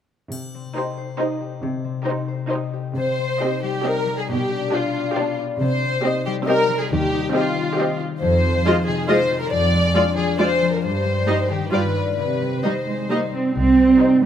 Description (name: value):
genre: cinematic, playful, whimsical film cue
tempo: 137 BPM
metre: 3/4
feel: straight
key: C minor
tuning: A4 = 438 Hz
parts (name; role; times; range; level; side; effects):
- concert harp; arpeggios; 0.3-14.3 s; F2 to Eb5; -26 LUFS; left 7 dB; none
- dark studio cello section; bass; 0.3-14.3 s; Eb2 to C4; -20 LUFS; right 3 dB; none
- triangle; percussion; 0.3-1.2 s; none; -42 LUFS; left 3 dB; none
- warm studio violin section; melody; 0.8-14.3 s; C5 to Eb5; -28 LUFS; left 3 dB; none
- warm studio violin section; second line; 0.8-14.3 s; F4 to D5; -23 LUFS; left 2 dB; none
- warm studio viola section; accompaniment; 0.8-14.3 s; G3 to G4; -24 LUFS; right 2 dB; none
- rich studio double bass section; bass; 13.6-13.9 s; C2; -22 LUFS; right 2 dB; none
room: light reverb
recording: close, detailed microphones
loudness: -18 LUFS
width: side -9 dB against mid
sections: 0.3-3.0 A section; 3.0-13.6 B section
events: none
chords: 0.3 Cm; 4.3 G7/B; 5.6 Cm; 6.9 Cm/Eb; 8.2 Fm7; 9.5 Ddim/F; 10.8 Cm/G; 11.7 G7; 12.2 Cm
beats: | 0.32 0.77 1.20 | 1.63 2.06 2.51 | 2.96 3.41 3.85 | 4.29 4.73 5.17 | 5.61 6.04 6.48 | 6.92 7.35 7.79 | 8.22 8.66 9.09 | 9.52 9.96 10.39 | 10.84 11.28 11.73 | 12.18 12.64 13.10 | 13.56 14.00